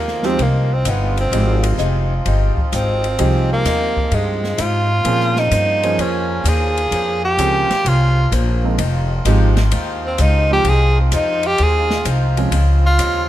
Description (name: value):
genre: jazz, big band swing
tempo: 128 BPM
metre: 4/4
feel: swing 68% on 8ths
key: F minor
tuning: A4 = 440 Hz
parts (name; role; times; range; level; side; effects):
- clear tenor saxophone; melody; 0.0-13.3 s; Ab3 to Ab4; -18 LUFS; right 1 dB; plate reverb
- picked swing-style acoustic guitar; accompaniment; 0.0-13.3 s; Db3 to C5; -28 LUFS; left 8 dB; none
- muted trombone section; sustained chords; 0.0-13.3 s; Bb2 to F4; -28 LUFS; right 3 dB; none
- upright bass; bass; 0.0-13.3 s; F1 to Bb2; -17 LUFS; equal; none
- open jazz drum kit; drums; 0.1-13.1 s; hi-hat, kick drum, ride cymbal, snare drum; -27 LUFS; left 2 dB; none
- warm upright piano; accompaniment; 0.2-12.5 s; F3 to C5; -23 LUFS; right 4 dB; none
room: light reverb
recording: close, detailed microphones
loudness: -14 LUFS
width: side -13 dB against mid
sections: 0.0-13.3 A section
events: tenor saxophone solo 0.0-13.3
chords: 0.0 Fm9; 5.1 Bbm9; 8.8 Fm9; 12.5 Dbmaj7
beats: 0.39 0.86 | 1.32 1.79 2.26 2.73 | 3.19 3.66 4.13 4.59 | 5.06 5.53 5.99 6.46 | 6.93 7.39 7.86 8.33 | 8.79 9.26 9.73 10.19 | 10.66 11.13 11.59 12.06 | 12.53 12.99